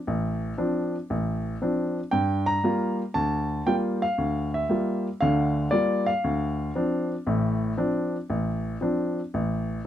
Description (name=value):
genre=solo jazz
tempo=116 BPM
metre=4/4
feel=swing 69% on 8ths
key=D minor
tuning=A4 = 440 Hz
part: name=warm baby grand piano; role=solo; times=0.1-9.8 s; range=A1 to Bb5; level=-24 LUFS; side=equal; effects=none
room=light reverb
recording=dry, close 1970s-style studio recording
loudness=-24 LUFS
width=side -11 dB against mid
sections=0.0-9.9 A section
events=none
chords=0.0 Dm7; 2.1 Gm7; 6.2 Dm7